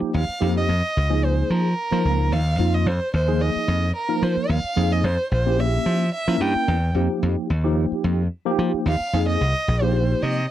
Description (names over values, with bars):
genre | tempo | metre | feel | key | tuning
electric jazz fusion | 110 BPM | 4/4 | swing 54% on 16ths | F minor | A4 = 441 Hz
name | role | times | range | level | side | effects
tine electric piano | accompaniment | 0.0-10.4 s | F3 to Bb4 | -24 LUFS | equal | overdrive, fast stereo tremolo, analog chorus
glassy slap bass | bass | 0.0-10.5 s | Bb1 to F3 | -21 LUFS | equal | none
warm violin | melody | 0.2-10.5 s | Bb4 to G5 | -25 LUFS | right 1 dB | none
room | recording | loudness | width
light reverb | dry, close 1970s-style studio recording | -19 LUFS | side -12 dB against mid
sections
0.0-10.5 A section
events
none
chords
0.0 F9sus4; 0.7 Eb9sus4; 2.9 Fm7; 5.0 Bbdim7; 7.0 F9sus4; 9.4 Cm7